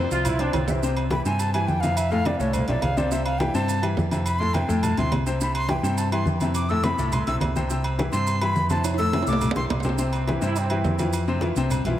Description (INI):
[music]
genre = latin, salsa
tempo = 210 BPM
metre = 4/4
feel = straight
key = C major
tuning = A4 = 440 Hz
[part]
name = bright baby grand piano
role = accompaniment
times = 0.0-12.0 s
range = A2 to C6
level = -26 LUFS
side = left 3 dB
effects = none
[part]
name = hollow-body short-scale fingered electric bass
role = bass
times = 0.0-12.0 s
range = B1 to G2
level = -26 LUFS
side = right 1 dB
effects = none
[part]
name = bright trombone section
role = second line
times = 0.1-0.8, 10.0-11.1 s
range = C4 to F4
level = -32 LUFS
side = right 3 dB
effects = analog delay
[part]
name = congas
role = percussion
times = 0.1-12.0 s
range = none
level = -30 LUFS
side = equal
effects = none
[part]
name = maracas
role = percussion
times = 0.1-12.0 s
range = none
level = -39 LUFS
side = right 9 dB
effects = none
[part]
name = agogo bells and timbales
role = percussion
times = 0.2-12.0 s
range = none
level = -32 LUFS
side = right 4 dB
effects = none
[part]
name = breathy bright concert flute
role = melody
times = 1.1-9.6 s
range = C5 to E6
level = -28 LUFS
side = right 1 dB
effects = analog delay
[sound]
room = moderate plate reverb, RT60 3.2 s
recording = dreamy mix soaked in reverb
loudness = -21 LUFS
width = side -12 dB against mid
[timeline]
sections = 0.8-10.0 A section; 10.0-12.0 B section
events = drum fill 0.4-0.8, 8.8-10.0; flute solo 0.8-10.0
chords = 0.0 F5; 0.8 C; 2.0 Fmaj7; 3.1 C6; 4.3 Fmaj7; 5.4 C; 6.6 Fmaj7; 7.7 C; 8.8 Fmaj7; 10.0 C; 11.1 F5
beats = 0.25 0.54 | 0.82 1.11 1.40 1.68 | 1.97 2.25 2.54 2.83 | 3.12 3.40 3.69 3.97 | 4.26 4.55 4.83 5.12 | 5.41 5.69 5.98 6.27 | 6.55 6.84 7.12 7.41 | 7.70 7.99 8.27 8.56 | 8.84 9.13 9.42 9.70 | 9.99 10.28 10.56 10.85 | 11.13 11.42 11.71 11.99